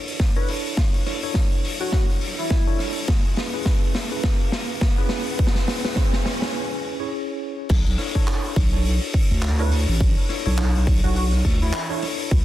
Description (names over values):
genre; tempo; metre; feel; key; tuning
glitch hop; 104 BPM; 4/4; swing 58% on 16ths; unclear; A4 = 440 Hz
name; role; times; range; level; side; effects
mellow tine electric piano; stabs; 0.0-12.3 s; C#4 to C#5; -30 LUFS; equal; slow stereo tremolo, sidechain pumping, ping-pong delay
riser; sound effects; 1.0-6.5 s; none; -34 LUFS; right 2 dB; none
raw garage drum kit; drums; 0.1-12.4 s; crash cymbal, handclaps, hi-hat, rim click, snare drum; -28 LUFS; left 1 dB; none
electronic kick drum; drums; 0.2-12.4 s; none; -20 LUFS; equal; none
sync lead; melody; 0.4-2.8, 9.6-12.0 s; E4 to B4; -31 LUFS; left 2 dB; lush chorus, ping-pong delay
wobble bass; bass; 7.7-12.4 s; A1 to D2; -20 LUFS; equal; chorus, tube saturation
room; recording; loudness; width
small room reverb; dense, heavily limited modern master; -19 LUFS; side -14 dB against mid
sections
0.0-7.7 A section; 7.7-12.4 B section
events
build-up 0.0-7.7; drum fill 0.0-6.5; riser 1.0-6.5; break 6.5-7.7; drop 7.7-12.4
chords
0.0 Dmaj7sus2; 3.1 C#m7; 7.7 Bm11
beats
0.20 | 0.78 1.35 1.93 2.50 | 3.08 3.66 4.24 4.81 | 5.39 5.97 6.54 7.12 | 7.70 8.28 8.85 9.43 | 10.01 10.58 11.16 11.74 | 12.31